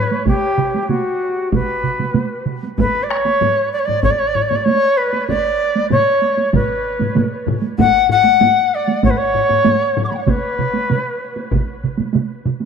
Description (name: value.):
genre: japanese traditional, taiko drum ensemble.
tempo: 96 BPM.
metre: 4/4.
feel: straight.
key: unclear.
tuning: A4 = 439 Hz.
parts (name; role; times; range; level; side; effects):
bright reedy shakuhachi; melody; 0.0-11.5 s; F#4 to D6; -16 LUFS; left 2 dB; none.
taiko ensemble; percussion; 0.1-12.7 s; none; -21 LUFS; right 6 dB; none.
taiko ensemble; percussion; 0.3-12.6 s; none; -21 LUFS; right 5 dB; none.
taiko ensemble; percussion; 0.3-11.7 s; none; -22 LUFS; equal; none.
taiko ensemble; percussion; 2.8-10.1 s; none; -23 LUFS; left 5 dB; none.
room: moderate huge ambient reverb, RT60 4.8 s.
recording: none.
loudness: -14 LUFS.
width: side -6 dB against mid.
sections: 0.0-12.7 A section.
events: none.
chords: none.